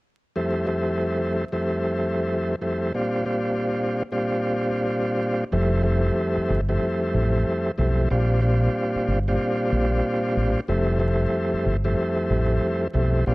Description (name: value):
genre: hip hop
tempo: 93 BPM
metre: 4/4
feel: swing 62% on 16ths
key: F major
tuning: A4 = 440 Hz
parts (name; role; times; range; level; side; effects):
- tonewheel organ; accompaniment; 0.4-13.3 s; F2 to F4; -22 LUFS; equal; fast rotary speaker, cassette tape
- deep dub fingered electric bass; bass; 5.5-13.3 s; F1 to B1; -22 LUFS; equal; none
room: light reverb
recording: worn, warbling old tape, cassette tape, vinyl crackle, warbly pitch drift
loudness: -21 LUFS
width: side -22 dB against mid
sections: 0.4-5.5 A section; 5.5-13.3 B section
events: none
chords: 0.4 Fmaj7; 2.9 Bb6; 5.5 Fmaj7; 8.1 Bb6; 10.7 Fmaj7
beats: | 0.37 1.01 1.66 2.30 | 2.95 3.59 4.24 4.88 | 5.53 6.17 6.82 7.46 | 8.11 8.76 9.40 10.05 | 10.69 11.34 11.98 12.63 | 13.27